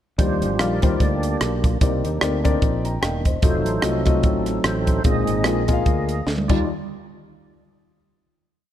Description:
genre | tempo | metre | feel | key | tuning
uptempo gospel | 148 BPM | 4/4 | swing 57% on 8ths | Eb major | A4 = 439 Hz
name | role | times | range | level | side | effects
warm baby grand piano | accompaniment | 0.2-6.7 s | Eb2 to Bb5 | -25 LUFS | left 6 dB | none
tonewheel organ | sustained chords | 0.2-6.6 s | C3 to Eb5 | -25 LUFS | right 2 dB | overdrive, chorus vibrato, slow rotary speaker
fingered electric bass | bass | 0.2-6.7 s | Fb1 to Eb2 | -25 LUFS | equal | none
crisp fusion drum kit | drums | 0.2-6.6 s | crash cymbal, hi-hat, kick drum, rim click, snare drum, toms | -21 LUFS | equal | none
room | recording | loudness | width
light reverb | dark, warm production | -18 LUFS | side -11 dB against mid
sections
0.2-6.7 breakdown; 6.7-8.3 final hit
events
tonewheel organ solo 0.2-6.7; drum fill 6.3-6.7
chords
0.2 Ebmaj9; 1.8 Cm9; 3.4 F7b9; 5.0 Bb7sus4; 6.5 Ebmaj9; 6.7 N.C.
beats
| 0.19 0.59 1.00 1.41 | 1.81 2.22 2.62 3.03 | 3.43 3.83 4.24 4.64 | 5.05 5.45 5.86 6.26

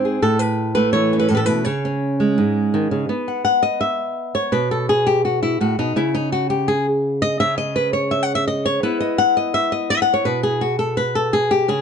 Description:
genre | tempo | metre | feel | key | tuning
flamenco | 167 BPM | 4/4 | straight | unclear | A4 = 440 Hz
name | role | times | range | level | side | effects
flamenco guitar | solo | 0.0-11.8 s | G#2 to F#5 | -17 LUFS | equal | none
room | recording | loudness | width
light reverb | dark, warm production, nothing above 10.3 kHz | -17 LUFS | side -7 dB against mid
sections
0.0-3.1 A section; 3.1-11.8 B section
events
nylon-string guitar solo 3.1-11.8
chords
0.2 A; 1.7 C#5; 3.1 Bsus4; 6.0 N.C.; 8.8 Bsus4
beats
| 0.23 0.58 0.94 1.30 | 1.66 2.02 2.38 2.73 | 3.09 3.45 3.81 4.17 | 4.53 4.88 5.24 5.60 | 5.96 6.32 6.68 7.04 | 7.39 7.75 8.11 8.47 | 8.83 9.18 9.54 9.90 | 10.26 10.62 10.97 11.33 | 11.69

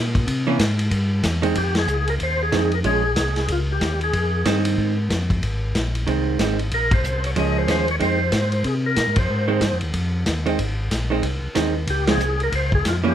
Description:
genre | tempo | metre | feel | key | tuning
soul jazz organ trio | 186 BPM | 4/4 | swing 62% on 8ths | F minor | A4 = 443 Hz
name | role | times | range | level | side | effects
mellow tonewheel organ | bass | 0.0-13.1 s | Ab1 to C3 | -23 LUFS | left 1 dB | chorus vibrato, slow rotary speaker
vintage drum kit | drums | 0.1-12.9 s | hi-hat, kick drum, ride cymbal, snare drum | -24 LUFS | left 1 dB | none
vintage hollow-body jazz guitar | accompaniment | 0.5-13.1 s | Eb3 to Db4 | -22 LUFS | right 5 dB | none
percussive tonewheel organ | melody | 1.6-4.6, 6.7-9.8, 11.9-13.1 s | F4 to Eb5 | -23 LUFS | left 1 dB | slow rotary speaker, overdrive, chorus vibrato, plate reverb
room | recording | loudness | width
light reverb | none | -18 LUFS | side -10 dB against mid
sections
0.0-1.6 A section; 1.6-13.1 B section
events
band accent 1.7, 6.9, 9.1, 12.0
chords
0.3 C; 1.6 Fm7; 2.8 Bbm7; 4.1 Fm7; 6.7 Bbm7; 8.0 Fm7; 11.9 Dbmaj7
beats
| 0.27 0.59 0.92 1.24 | 1.56 1.88 2.20 2.52 | 2.85 3.17 3.49 3.81 | 4.13 4.46 4.78 5.10 | 5.42 5.74 6.07 6.39 | 6.71 7.03 7.36 7.68 | 8.00 8.32 8.65 8.97 | 9.29 9.61 9.94 10.26 | 10.58 10.90 11.23 11.55 | 11.87 12.20 12.52 12.84

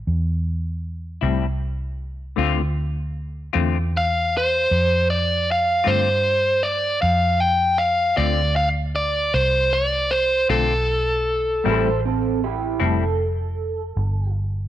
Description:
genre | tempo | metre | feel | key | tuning
slow blues | 52 BPM (dotted quarters) | 12/8 | straight | unclear | A4 = 440 Hz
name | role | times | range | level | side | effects
vintage muted fingered electric bass | bass | 0.0-14.7 s | F1 to G2 | -24 LUFS | equal | none
semi-hollow electric guitar | accompaniment | 1.2-13.0 s | A2 to F4 | -24 LUFS | left 9 dB | harmonic tremolo
biting lead guitar | melody | 4.0-12.0 s | A4 to G5 | -19 LUFS | equal | overdrive
electric guitar through a small old amp | second line | 11.7-14.3 s | C4 to C5 | -25 LUFS | right 8 dB | analog chorus
room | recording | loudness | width
moderate echo chamber reverb, RT60 1.5 s | 1960s-style stereo with parts hard left and right | -18 LUFS | side -12 dB against mid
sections
0.0-14.7 A section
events
none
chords
0.0 Am (rootless); 2.4 Dm7; 11.6 Am7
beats
0.05 1.21 | 2.37 3.53 4.69 5.85 | 7.01 8.17 9.33 10.49 | 11.65 12.81 13.96

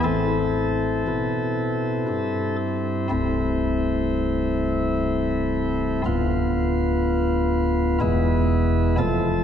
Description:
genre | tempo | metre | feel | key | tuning
classical, chorale-style piece for pipe organ | 60 BPM | 3/4 | uneven beats, rubato | A minor | A4 = 435 Hz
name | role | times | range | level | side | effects
chamber organ, sparkling flutes | solo | 0.0-9.4 s | C1 to A4 | -20 LUFS | equal | none
room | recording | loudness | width
wet concert hall reverb, RT60 2.4 s | minimal, uncompressed stereo recording | -20 LUFS | side -8 dB against mid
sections
0.0-3.1 A section; 3.1-9.4 B section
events
none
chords
0.0 Am; 3.1 Am/C; 6.1 Bdim/D; 8.0 E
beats
| 0.03 1.06 2.08 | 3.11 4.11 5.09 | 6.06 7.04 8.02 | 8.99

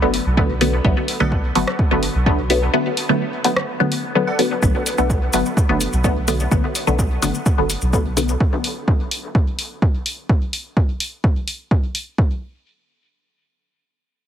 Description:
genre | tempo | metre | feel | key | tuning
dub techno | 127 BPM | 4/4 | straight | B minor | A4 = 445 Hz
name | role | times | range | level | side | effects
filtered dub chord stab | stabs | 0.0-8.3 s | D3 to B3 | -20 LUFS | left 1 dB | phaser, sidechain pumping, dub echo
soft dub sub bass | bass | 0.0-8.4 s | F#1 to B1 | -22 LUFS | equal | sidechain pumping
deep house drum kit | drums | 0.1-12.0 s | hi-hat, rim click | -24 LUFS | equal | none
electronic kick drum | drums | 0.4-12.3 s | none | -17 LUFS | equal | none
wavetable chord stab | riff | 1.2-1.4, 4.3-5.2 s | A4 to F#5 | -32 LUFS | right 2 dB | sidechain pumping, dub echo
maracas | percussion | 4.6-8.4 s | none | -28 LUFS | left 2 dB | none
room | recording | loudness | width
light reverb | heavily compressed radio sound | -17 LUFS | side -10 dB against mid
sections
0.0-4.6 A section; 4.6-12.2 B section; 12.2-14.3 C section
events
filter sweep on synth stab 4.6-8.4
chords
0.0 Bm7; 12.2 N.C.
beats
0.37 | 0.84 1.32 1.79 2.26 | 2.73 3.21 3.68 4.15 | 4.62 5.10 5.57 6.04 | 6.51 6.99 7.46 7.93 | 8.40 8.88 9.35 9.82 | 10.29 10.77 11.24 11.71 | 12.18

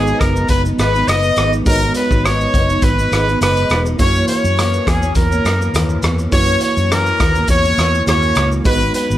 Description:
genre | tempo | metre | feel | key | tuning
indie pop, bedroom pop | 103 BPM | 4/4 | swing 55% on 16ths | G# minor | A4 = 441 Hz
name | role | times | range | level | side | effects
bright trumpet | melody | 0.0-9.2 s | G#4 to D#5 | -17 LUFS | equal | lush chorus, slapback echo
picked steel-string acoustic guitar | accompaniment | 0.0-9.2 s | F#2 to D#4 | -21 LUFS | left 1 dB | ensemble chorus, vibrato effect
reed electric piano | accompaniment | 0.0-9.2 s | G#3 to C#5 | -25 LUFS | right 3 dB | cassette tape
vintage muted fingered electric bass | bass | 0.0-9.2 s | E1 to F#2 | -18 LUFS | equal | none
raw garage drum kit | drums | 0.1-9.2 s | hi-hat, kick drum, rim click, shaker | -19 LUFS | equal | none
room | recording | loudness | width
small room reverb | none | -12 LUFS | side -13 dB against mid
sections
0.0-9.2 A section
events
none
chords
0.0 G#m7; 4.0 F#7; 8.7 G#m7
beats
0.49 1.08 | 1.66 2.24 2.83 3.41 | 3.99 4.57 5.16 5.74 | 6.32 6.91 7.49 8.07 | 8.65

